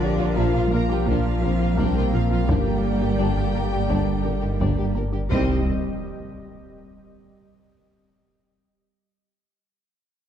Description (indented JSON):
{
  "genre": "cinematic, hybrid orchestral and electronic film score",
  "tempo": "85 BPM",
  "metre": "4/4",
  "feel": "straight",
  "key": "unclear",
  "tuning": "A4 = 440 Hz",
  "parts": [
    { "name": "warm chamber violin section", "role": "second line", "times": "0.0-5.7 s", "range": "C5 to Bb5", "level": "-34 LUFS", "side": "left 1 dB", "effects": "none" },
    { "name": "warm symphonic viola section", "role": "accompaniment", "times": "0.0-5.7 s", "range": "G3 to Bb4", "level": "-34 LUFS", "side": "left 2 dB", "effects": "none" },
    { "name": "airy breathy pad", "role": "sustained chords", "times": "0.0-5.7 s", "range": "F3 to F5", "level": "-30 LUFS", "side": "right 1 dB", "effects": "chorus" },
    { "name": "bright trombone section", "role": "sustained chords", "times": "0.0-5.6 s", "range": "C3 to Bb3", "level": "-32 LUFS", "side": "right 4 dB", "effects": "none" },
    { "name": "clear French horn section", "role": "sustained chords", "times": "0.0-5.6 s", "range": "Bb3 to G4", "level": "-31 LUFS", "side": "left 5 dB", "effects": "none" },
    { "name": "sub bass with octave", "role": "bass", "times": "0.0-5.7 s", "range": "G1 to C2", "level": "-26 LUFS", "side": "equal", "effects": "none" },
    { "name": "warm studio cello section", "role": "bass", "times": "0.0-5.7 s", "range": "D3 to C4", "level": "-29 LUFS", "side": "right 3 dB", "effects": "none" },
    { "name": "warm chamber violin section", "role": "melody", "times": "0.2-5.7 s", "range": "D4 to Eb5", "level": "-33 LUFS", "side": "left 6 dB", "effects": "none" },
    { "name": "glassy wavetable pluck", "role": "arpeggios", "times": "0.2-5.2 s", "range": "G3 to Bb4", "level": "-33 LUFS", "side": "left 2 dB", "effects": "chorus, tape echo" },
    { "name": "warm symphonic double bass section", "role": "bass", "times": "0.2-5.7 s", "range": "G1 to C2", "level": "-30 LUFS", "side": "right 2 dB", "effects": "none" },
    { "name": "mellow tuba", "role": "bass", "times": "0.4-5.6 s", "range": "G1 to C2", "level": "-30 LUFS", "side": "right 3 dB", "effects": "none" },
    { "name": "taiko ensemble", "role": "drums", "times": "1.1-6.7 s", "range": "none", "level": "-28 LUFS", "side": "equal", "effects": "none" },
    { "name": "impact", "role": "sound effects", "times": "5.3-8.1 s", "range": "none", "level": "-32 LUFS", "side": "left 1 dB", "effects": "none" }
  ],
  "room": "moderate scoring stage reverb, RT60 1.6 s",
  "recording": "dark, warm production",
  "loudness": "-20 LUFS",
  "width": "side -9 dB against mid",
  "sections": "0.0-5.3 A section; 5.3-8.1 B section",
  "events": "impact 5.3-8.1",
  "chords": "0.0 Bb; 2.5 Gm; 5.3 Cm"
}